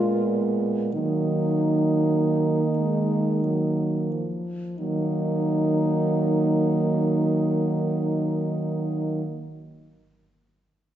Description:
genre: classical, lyrical piece for horn quartet.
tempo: 28-38 BPM (dotted quarters).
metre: 6/8.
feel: rubato.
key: Eb minor.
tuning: A4 = 440 Hz.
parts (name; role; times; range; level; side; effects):
warm French horn; melody; 0.0-9.2 s; Eb4 to F4; -29 LUFS; left 2 dB; none.
mellow French horn; second line; 0.0-9.3 s; Bb3 to D4; -29 LUFS; right 6 dB; none.
dark French horn; accompaniment; 0.0-9.3 s; F3 to Ab3; -28 LUFS; left 1 dB; none.
mellow French horn; bass; 0.0-9.2 s; Bb2 to Eb3; -26 LUFS; right 1 dB; none.
room: wet recital hall reverb, RT60 1.6 s.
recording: recorded in a church or concert hall, nothing above 7.9 kHz, faint mains hum.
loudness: -21 LUFS.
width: side -11 dB against mid.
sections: 0.0-4.8 A section; 4.8-8.8 B section.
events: slowing down 0.0-4.8.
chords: 0.0 Bb7(no3); 0.9 Ebm.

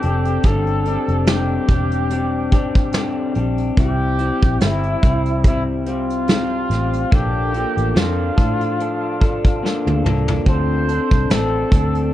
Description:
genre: indie pop, bedroom pop.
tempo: 72 BPM.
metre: 4/4.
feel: swing 55% on 16ths.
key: unclear.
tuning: A4 = 439 Hz.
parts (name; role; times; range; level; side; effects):
mellow trumpet; melody; 0.0-12.1 s; E4 to C5; -24 LUFS; right 1 dB; wide subtle chorus, tape echo.
electric guitar through a small old amp; accompaniment; 0.0-12.1 s; G2 to A4; -22 LUFS; left 2 dB; wide subtle chorus, warbly pitch drift.
vintage muted fingered electric bass; bass; 0.0-12.1 s; E1 to A2; -21 LUFS; equal; none.
soft brush drum kit; drums; 0.0-12.1 s; hi-hat, kick drum, snare drum, toms; -17 LUFS; equal; none.
room: light reverb, small room ambience.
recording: worn, warbling old tape, cassette tape, warbly pitch drift.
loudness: -16 LUFS.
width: side -13 dB against mid.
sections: 0.0-12.1 A section.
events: drum fill 9.6-10.5.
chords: 0.5 Gsus4; 3.8 C; 7.1 Bbmaj7; 10.5 Dm7.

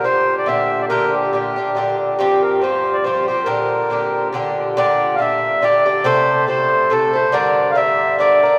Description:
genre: celtic folk, Celtic waltz.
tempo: 140 BPM.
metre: 3/4.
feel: swing 56% on 8ths.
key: G dorian.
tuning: A4 = 440 Hz.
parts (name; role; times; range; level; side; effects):
mellow accordion; melody; 0.0-8.6 s; G4 to F5; -19 LUFS; equal; none.
Irish bouzouki; accompaniment; 0.0-8.6 s; G2 to Bb4; -21 LUFS; equal; none.
room: wet cathedral reverb, RT60 6.0 s.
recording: recorded in a church or concert hall.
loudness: -17 LUFS.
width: mono.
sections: 0.0-4.8 A section; 4.8-8.6 B section.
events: none.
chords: 0.0 Gm; 2.2 Fsus2; 3.5 Gm; 6.1 Am; 7.3 Gm.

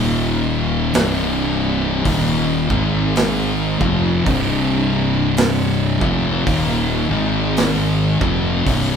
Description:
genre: stoner and doom metal.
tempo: 54 BPM.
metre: 4/4.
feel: swing 59% on 8ths.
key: unclear.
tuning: A4 = 441 Hz.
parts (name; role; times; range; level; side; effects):
string machine, full ensemble; sustained chords; 0.0-9.0 s; C3 to Bb4; -30 LUFS; right 4 dB; none.
thick fuzz guitar; riff; 0.0-9.0 s; C2 to Ab3; -19 LUFS; left 7 dB; distortion.
thick fuzz guitar; riff; 0.0-9.0 s; C2 to Ab3; -22 LUFS; right 11 dB; distortion.
fuzz fingered electric bass; bass; 0.0-9.0 s; C1 to Ab1; -23 LUFS; right 1 dB; overdrive.
big rock drum kit; drums; 0.9-9.0 s; hi-hat, kick drum, snare drum; -22 LUFS; right 1 dB; none.
room: light reverb.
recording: band playing live in one room.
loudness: -15 LUFS.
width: side -7 dB against mid.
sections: 0.0-9.0 A section.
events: none.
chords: 0.0 Eb5; 0.9 C5; 2.1 Eb5; 2.6 Ab5; 3.7 Eb5; 4.3 C5; 5.9 Eb5; 7.0 Ab5; 8.1 Eb5.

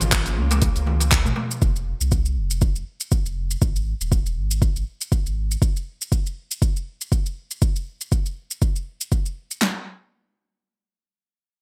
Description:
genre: afro house.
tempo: 120 BPM.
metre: 4/4.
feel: swing 56% on 16ths.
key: unclear.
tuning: A4 = 440 Hz.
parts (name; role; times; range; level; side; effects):
rich symphonic string section; sustained chords; 0.0-1.6 s; Db3 to F4; -36 LUFS; equal; sidechain pumping, low-pass filter.
warm sub bass; bass; 0.0-5.6 s; Eb1 to Db2; -26 LUFS; equal; sidechain pumping.
deep house drum kit; drums; 0.0-9.6 s; handclaps, hi-hat, shaker; -28 LUFS; equal; overdrive, gated reverb.
congas; percussion; 0.0-1.5 s; none; -33 LUFS; equal; none.
deep house drum kit; drums; 0.1-9.7 s; handclaps, kick drum, snare drum; -23 LUFS; equal; overdrive.
darbuka; percussion; 0.5-1.5 s; none; -34 LUFS; equal; none.
room: small room ambience.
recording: bright 1980s-style digital production.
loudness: -23 LUFS.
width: mono.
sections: 0.0-9.6 A section; 9.6-11.6 B section.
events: filter sweep on string section 0.0-1.6.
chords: 0.0 Db6; 1.6 F5; 3.6 Ab5; 5.6 N.C..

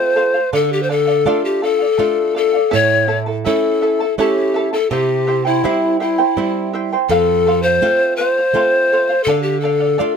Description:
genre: andean folk.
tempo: 82 BPM.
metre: 3/4.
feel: straight.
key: D minor.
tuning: A4 = 439 Hz.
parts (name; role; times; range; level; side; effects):
breathy reedy pan flute; melody; 0.0-10.2 s; E4 to C#5; -15 LUFS; left 3 dB; none.
charango; accompaniment; 0.0-10.2 s; E4 to A5; -21 LUFS; right 3 dB; none.
flamenco guitar; accompaniment; 0.0-10.2 s; F2 to F4; -21 LUFS; right 6 dB; none.
room: little or no reverb.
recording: close, detailed microphones.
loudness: -14 LUFS.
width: side -6 dB against mid.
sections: 0.0-10.2 A section.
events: none.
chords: 0.0 F; 0.5 Dm; 2.7 A; 4.9 C; 7.1 F; 9.3 Dm.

